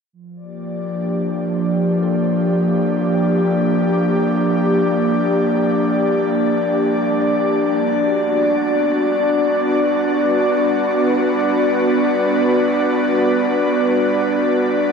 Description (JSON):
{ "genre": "ambient", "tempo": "free time", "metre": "none", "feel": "none", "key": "unclear", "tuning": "A4 = 441 Hz", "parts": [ { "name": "airy breathy pad", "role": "sustained chords", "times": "0.1-14.9 s", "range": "F3 to D5", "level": "-15 LUFS", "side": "equal", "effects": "chorus" }, { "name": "soft synth bell", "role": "arpeggios", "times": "2.0-11.9 s", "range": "none", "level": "barely audible", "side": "none", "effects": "none" } ], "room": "wet plate reverb, RT60 2.5 s", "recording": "dreamy mix soaked in reverb", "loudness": "-15 LUFS", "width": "side -6 dB against mid", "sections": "0.1-14.9 A section", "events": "none", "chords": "0.1 Gm7; 7.9 Bm" }